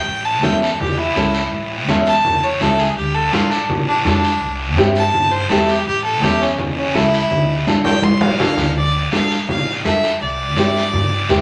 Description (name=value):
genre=latin, cumbia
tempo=166 BPM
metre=4/4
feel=straight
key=D minor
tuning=A4 = 440 Hz
part: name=clear fiddle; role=melody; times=0.0-11.4 s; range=C#4 to C6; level=-22 LUFS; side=equal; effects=none
part: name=upright bass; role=bass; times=0.1-11.4 s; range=A1 to G2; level=-26 LUFS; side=equal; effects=none
part: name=congas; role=percussion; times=0.1-11.4 s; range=none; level=-23 LUFS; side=equal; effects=none
part: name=guiro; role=percussion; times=0.1-11.4 s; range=none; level=-26 LUFS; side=equal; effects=none
part: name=nylon-string guitar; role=accompaniment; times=0.4-11.4 s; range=C4 to A4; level=-22 LUFS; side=equal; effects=none
room=wet studio reverb, RT60 0.6 s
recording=none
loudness=-17 LUFS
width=mono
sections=0.0-8.8 A section; 8.8-11.4 B section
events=fiddle solo 0.0-8.8; drum fill 7.9-8.8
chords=0.1 A; 3.0 Dm; 4.4 C; 5.9 A; 7.3 Dm; 10.2 C